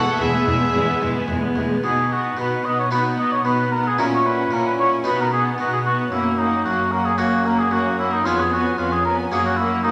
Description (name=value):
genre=classical, baroque-style concerto movement with solo episodes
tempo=112 BPM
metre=4/4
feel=straight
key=B major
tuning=A4 = 440 Hz
part: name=rich chamber violin section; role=melody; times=0.0-9.9 s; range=E5 to G#5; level=-35 LUFS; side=equal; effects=none
part: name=rich chamber violin section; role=second line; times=0.0-9.9 s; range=C#4 to A4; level=-34 LUFS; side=equal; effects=none
part: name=harpsichord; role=accompaniment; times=0.0-9.9 s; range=E2 to G#4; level=-29 LUFS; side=equal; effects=none
part: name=rich chamber viola section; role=accompaniment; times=0.0-9.9 s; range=G#3 to C#4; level=-26 LUFS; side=equal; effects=none
part: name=warm oboe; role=melody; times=0.2-9.9 s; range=D#4 to D#5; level=-23 LUFS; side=equal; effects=none
part: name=rich chamber cello section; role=bass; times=0.2-9.9 s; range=E2 to B2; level=-29 LUFS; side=equal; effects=none
part: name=rich chamber double bass section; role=bass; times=0.2-1.6 s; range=E1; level=-31 LUFS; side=equal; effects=none
room=wet recital hall reverb, RT60 1.2 s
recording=none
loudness=-20 LUFS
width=mono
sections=0.0-1.8 A section; 1.8-9.9 B section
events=none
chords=0.0 E; 1.8 B; 4.0 F#7/A#; 5.0 B; 6.1 F#; 8.3 C#7/E#; 9.3 F#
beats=0.20 0.75 1.29 | 1.84 2.38 2.91 3.44 | 3.98 4.51 5.05 5.58 | 6.12 6.65 7.18 7.72 | 8.25 8.78 9.31 9.84